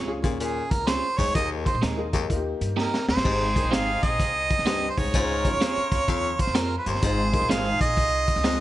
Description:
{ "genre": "uptempo 1960s-style soul", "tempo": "127 BPM", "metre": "4/4", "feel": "swing 65% on 8ths", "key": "Ab major", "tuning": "A4 = 440 Hz", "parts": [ { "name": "clean electric guitar", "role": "stabs", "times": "0.0-8.6 s", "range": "Ab3 to Db5", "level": "-32 LUFS", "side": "right 5 dB", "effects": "spring reverb" }, { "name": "upright bass", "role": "bass", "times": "0.0-8.6 s", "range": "G1 to Bb2", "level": "-30 LUFS", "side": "equal", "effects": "none" }, { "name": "warm upright piano", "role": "accompaniment", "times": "0.1-7.8 s", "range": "Bb3 to G5", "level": "-32 LUFS", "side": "left 3 dB", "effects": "none" }, { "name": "breathy baritone saxophone", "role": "riff", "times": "0.2-8.6 s", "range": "Eb2 to Bb2", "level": "-30 LUFS", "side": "left 6 dB", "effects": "none" }, { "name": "crunchy breakbeat drum kit", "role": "drums", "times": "0.2-8.6 s", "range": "crash cymbal, hi-hat, kick drum, snare drum", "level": "-26 LUFS", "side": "equal", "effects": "none" }, { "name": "mellow harmonica", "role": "melody", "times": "0.4-8.6 s", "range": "Ab4 to F5", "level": "-26 LUFS", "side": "right 2 dB", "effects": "tape echo" }, { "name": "clear horn section", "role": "second line", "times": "3.2-8.6 s", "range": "C4 to Bb4", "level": "-34 LUFS", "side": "left 2 dB", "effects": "tape echo" } ], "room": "light reverb", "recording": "nothing above 10.9 kHz", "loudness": "-22 LUFS", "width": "side -14 dB against mid", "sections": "0.0-3.2 A section; 3.2-8.6 B section", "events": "harmonica solo 0.0-3.2; drum fill 2.8-3.2", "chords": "0.0 Db; 1.4 Ebsus4; 2.3 Eb; 3.2 Abmaj7; 5.1 Dbmaj7; 7.0 Ab6", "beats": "0.41 0.88 | 1.36 1.83 2.30 2.77 | 3.25 3.72 4.19 4.67 | 5.14 5.61 6.08 6.55 | 7.03 7.50 7.97 8.44" }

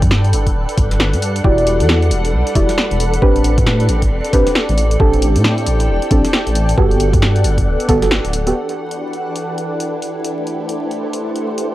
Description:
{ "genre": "UK garage, two-step garage", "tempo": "135 BPM", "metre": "4/4", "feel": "swing 61% on 16ths", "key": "E minor", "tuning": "A4 = 440 Hz", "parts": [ { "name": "soft string machine", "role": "sustained chords", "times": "0.0-11.7 s", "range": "E3 to F#5", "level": "-25 LUFS", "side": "equal", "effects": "phaser, ensemble chorus, sidechain pumping" }, { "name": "dark detuned saw bass", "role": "bass", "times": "0.0-8.5 s", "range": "D1 to A2", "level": "-16 LUFS", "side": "equal", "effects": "none" }, { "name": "electronic kick drum", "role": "drums", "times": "0.0-8.0 s", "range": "none", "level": "-17 LUFS", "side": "equal", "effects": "none" }, { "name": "punchy analog drum machine", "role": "drums", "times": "0.0-11.6 s", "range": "hi-hat, snare drum", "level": "-20 LUFS", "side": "equal", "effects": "none" }, { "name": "granular cloud pad", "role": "texture", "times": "0.0-11.7 s", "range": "E4 to G5", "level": "-23 LUFS", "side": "left 1 dB", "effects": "built-in reverb, sidechain pumping" }, { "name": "deep mellow chord stab", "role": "stabs", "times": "1.4-8.5 s", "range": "B3 to D5", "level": "-18 LUFS", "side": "right 1 dB", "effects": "chorus, analog delay" } ], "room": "digital ambience", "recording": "dry, gritty hardware recording, vinyl crackle", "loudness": "-13 LUFS", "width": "side -15 dB against mid", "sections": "0.0-8.6 A section; 8.6-11.7 B section", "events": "band accent 8.1", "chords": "0.0 Gmaj9; 1.4 Em9; 3.2 Am11; 5.0 D7sus4/A; 6.8 Gmaj9; 8.6 Em9; 10.3 Am11", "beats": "0.11 0.56 1.00 | 1.44 1.89 2.33 2.78 | 3.22 3.67 4.11 4.55 | 5.00 5.44 5.89 6.33 | 6.78 7.22 7.67 8.11 | 8.55 9.00 9.44 9.89 | 10.33 10.78 11.22 11.67" }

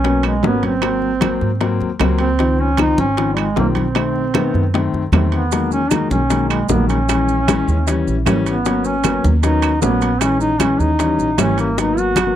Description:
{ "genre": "Afro-Cuban jazz", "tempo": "154 BPM", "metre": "4/4", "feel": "straight", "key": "G# minor", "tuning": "A4 = 436 Hz", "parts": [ { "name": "warm duduk", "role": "melody", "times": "0.0-12.4 s", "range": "G3 to F#4", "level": "-19 LUFS", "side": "right 1 dB", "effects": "none" }, { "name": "warm grand piano", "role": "accompaniment", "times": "0.0-12.4 s", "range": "D#3 to C#4", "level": "-20 LUFS", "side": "left 5 dB", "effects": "none" }, { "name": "upright bass", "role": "bass", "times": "0.0-12.3 s", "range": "G#1 to G#2", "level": "-20 LUFS", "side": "right 1 dB", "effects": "none" }, { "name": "bongos", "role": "percussion", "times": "0.0-12.4 s", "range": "none", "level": "-24 LUFS", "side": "left 8 dB", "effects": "none" }, { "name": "congas", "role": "percussion", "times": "0.0-12.4 s", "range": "none", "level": "-24 LUFS", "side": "equal", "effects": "none" }, { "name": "timbales", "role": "percussion", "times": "0.0-12.4 s", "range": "none", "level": "-25 LUFS", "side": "right 12 dB", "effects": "none" }, { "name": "claves", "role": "percussion", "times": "0.2-12.4 s", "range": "none", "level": "-27 LUFS", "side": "right 25 dB", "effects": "none" }, { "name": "maracas", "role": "percussion", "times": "5.5-12.4 s", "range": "none", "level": "-30 LUFS", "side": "right 25 dB", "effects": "none" } ], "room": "moderate booth ambience, RT60 0.2 s", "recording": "dry, close 1970s-style studio recording", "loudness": "-14 LUFS", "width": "side -11 dB against mid", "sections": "0.0-11.8 A section", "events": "none", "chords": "0.0 G#m11; 0.8 G#7; 2.4 C#maj7; 4.0 B7b9; 5.5 Emaj9#11; 7.1 A#m7b5; 7.9 D#7b9; 8.6 G#m11; 10.2 A#m7b5; 11.0 D#7b9; 11.8 G#m9", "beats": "0.05 0.44 | 0.83 1.22 1.61 2.01 | 2.40 2.79 3.18 3.57 | 3.96 4.35 4.74 5.13 | 5.52 5.91 6.30 6.70 | 7.09 7.48 7.87 8.26 | 8.65 9.04 9.43 9.82 | 10.21 10.60 10.99 11.38 | 11.77 12.16" }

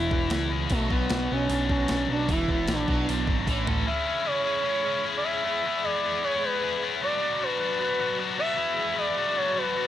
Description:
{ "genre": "indie rock", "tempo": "152 BPM", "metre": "4/4", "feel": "straight", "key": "E mixolydian", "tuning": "A4 = 444 Hz", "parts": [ { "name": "expressive portamento lead", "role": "melody", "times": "0.0-9.9 s", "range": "A3 to E5", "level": "-28 LUFS", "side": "equal", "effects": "chorus, analog delay" }, { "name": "crunchy overdriven guitar", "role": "riff", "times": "0.0-3.9 s", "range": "E2 to A4", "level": "-33 LUFS", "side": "right 8 dB", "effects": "ensemble chorus" }, { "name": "scooped high-gain guitar", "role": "riff", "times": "0.0-9.9 s", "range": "E3 to A4", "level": "-28 LUFS", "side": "left 6 dB", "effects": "distortion" }, { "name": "growling picked electric bass", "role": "bass", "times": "0.0-3.8 s", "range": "E1 to C#2", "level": "-30 LUFS", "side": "equal", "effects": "overdrive" }, { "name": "clean 12-bit digital drum machine", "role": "drums", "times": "0.1-3.8 s", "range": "hi-hat, kick drum, snare drum, toms", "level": "-29 LUFS", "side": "equal", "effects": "none" }, { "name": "string machine, cellos", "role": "sustained chords", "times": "3.9-9.9 s", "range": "F#4 to C#6", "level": "-39 LUFS", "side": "right 2 dB", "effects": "ensemble chorus" } ], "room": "light reverb", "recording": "none", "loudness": "-24 LUFS", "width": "side -11 dB against mid", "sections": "0.0-3.9 A section; 3.9-9.9 B section", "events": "drum fill 3.5-3.9", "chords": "0.0 E; 0.7 Bm; 2.3 E; 2.9 Bm; 3.5 A; 3.9 C#m; 5.4 E; 7.0 Bm; 8.6 E; 9.2 Bm", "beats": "0.31 | 0.70 1.10 1.50 1.89 | 2.29 2.69 3.08 3.48 | 3.87 4.27 4.66 5.05 | 5.45 5.84 6.24 6.63 | 7.02 7.41 7.81 8.20 | 8.59 8.98 9.38 9.77" }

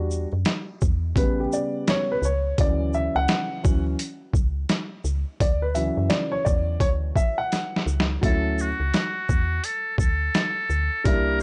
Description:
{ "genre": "hip hop, jazz-hop", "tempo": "85 BPM", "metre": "4/4", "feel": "swing 63% on 16ths", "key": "D major", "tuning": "A4 = 440 Hz", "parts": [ { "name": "dark concert grand piano", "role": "accompaniment", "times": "0.0-11.4 s", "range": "C#3 to F#5", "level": "-28 LUFS", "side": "equal", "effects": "none" }, { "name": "woody FM bass", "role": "bass", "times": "0.0-11.4 s", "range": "A1 to F#2", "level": "-28 LUFS", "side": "equal", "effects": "none" }, { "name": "boom bap sampler-style drum kit", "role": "drums", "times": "0.1-11.4 s", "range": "hi-hat, kick drum, shaker, snare drum", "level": "-26 LUFS", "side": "equal", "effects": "overdrive" }, { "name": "trumpet with metal mute", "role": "melody", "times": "8.2-11.4 s", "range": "F#4 to Bb4", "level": "-28 LUFS", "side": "equal", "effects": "none" } ], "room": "little or no reverb", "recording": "dry, gritty hardware recording", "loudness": "-24 LUFS", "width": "mono", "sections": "0.0-8.2 A section; 8.2-11.4 B section", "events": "grand piano solo 0.0-8.2; drum fill 7.5-8.2", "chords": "0.0 Em9; 1.2 A7; 2.6 Dmaj7", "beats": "0.47 1.18 1.88 | 2.59 3.29 4.00 4.70 | 5.41 6.12 6.82 7.53 | 8.23 8.94 9.64 10.35 | 11.06" }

